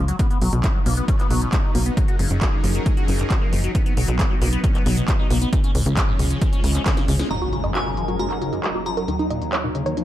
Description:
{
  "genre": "uplifting trance",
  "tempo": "135 BPM",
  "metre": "4/4",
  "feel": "straight",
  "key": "F# major",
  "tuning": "A4 = 440 Hz",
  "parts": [
    { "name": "liquid acid bass", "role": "arpeggios", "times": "0.0-10.0 s", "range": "C#2 to F#4", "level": "-28 LUFS", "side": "left 3 dB", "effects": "phaser, lush chorus, sidechain pumping, tape echo" },
    { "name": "tight sequencer bass", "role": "bass", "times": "0.0-10.0 s", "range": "F#1 to D#2", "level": "-22 LUFS", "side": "equal", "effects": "sidechain pumping" },
    { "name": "techno drum kit", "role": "drums", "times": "0.1-10.0 s", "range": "handclaps, hi-hat, snare drum", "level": "-28 LUFS", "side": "equal", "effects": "overdrive, low-pass filter on hats, low-pass filter on snare" },
    { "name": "supersaw pad", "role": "sustained chords", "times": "0.2-10.0 s", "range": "E#3 to A#4", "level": "-29 LUFS", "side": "right 1 dB", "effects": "phaser, sidechain pumping, low-pass filter" },
    { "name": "electronic kick drum", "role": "drums", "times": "0.2-6.9 s", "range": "none", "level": "-20 LUFS", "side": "equal", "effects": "overdrive" },
    { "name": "wide unison pluck", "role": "melody", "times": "7.3-10.0 s", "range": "D#4 to D#5", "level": "-27 LUFS", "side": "right 1 dB", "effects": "vintage 12-bit sampler grit, sidechain pumping, ping-pong delay" },
    { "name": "glassy synth bell", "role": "second line", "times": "7.3-10.0 s", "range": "G#5 to A#5", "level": "-31 LUFS", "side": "left 1 dB", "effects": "chorus, tape echo" },
    { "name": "impact", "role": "sound effects", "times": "7.3-9.1 s", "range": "none", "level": "-31 LUFS", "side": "equal", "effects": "none" }
  ],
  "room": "light reverb, digital ambience",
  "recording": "dark, warm production",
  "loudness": "-18 LUFS",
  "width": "side -13 dB against mid",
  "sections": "0.0-7.3 A section; 7.3-10.0 B section",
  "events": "filter sweep on acid bass 0.0-7.3, 7.3-10.0; drum fill 6.9-7.3; band accent 7.2; impact 7.3-9.1",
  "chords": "0.2 B; 2.0 F#6; 3.8 B; 5.5 C#; 7.3 F#6; 9.1 D#m",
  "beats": "| 0.19 0.64 1.08 1.53 | 1.97 2.42 2.86 3.31 | 3.75 4.19 4.64 5.08 | 5.53 5.97 6.42 6.86 | 7.30 7.75 8.19 8.64 | 9.08 9.53 9.97"
}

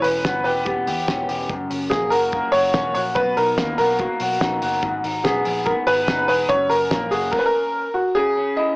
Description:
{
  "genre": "jangly indie pop",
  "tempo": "144 BPM",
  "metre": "4/4",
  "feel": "straight",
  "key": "unclear",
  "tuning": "A4 = 440 Hz",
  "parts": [
    { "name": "clear upright piano", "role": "melody", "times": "0.0-8.8 s", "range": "F#4 to D#5", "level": "-19 LUFS", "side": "equal", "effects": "cassette tape" },
    { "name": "electric guitar through a small old amp", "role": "arpeggios", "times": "0.0-8.8 s", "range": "F#2 to G#4", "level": "-24 LUFS", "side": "left 1 dB", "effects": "wide subtle chorus, cassette tape" },
    { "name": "vintage muted picked electric bass", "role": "bass", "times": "0.0-7.3 s", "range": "E1 to E2", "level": "-34 LUFS", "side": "equal", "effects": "none" },
    { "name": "cloth-damped thuddy drum kit", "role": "drums", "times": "0.0-7.4 s", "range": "crash cymbal, hi-hat, kick drum, snare drum", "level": "-27 LUFS", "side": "equal", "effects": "cassette tape" }
  ],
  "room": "moderate spring reverb, RT60 1.8 s, small room ambience",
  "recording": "home recording on cassette, small speaker sound",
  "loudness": "-18 LUFS",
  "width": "side -30 dB against mid",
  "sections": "0.0-8.2 A section",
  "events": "none",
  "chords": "0.0 Em6; 1.5 F#; 3.2 Bmaj7; 4.8 G#m7; 6.5 F#; 8.2 C#m",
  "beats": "0.24 0.66 1.08 | 1.50 1.91 2.33 2.75 | 3.16 3.58 4.00 4.41 | 4.83 5.25 5.66 6.08 | 6.50 6.91 7.33 7.75 | 8.16 8.58"
}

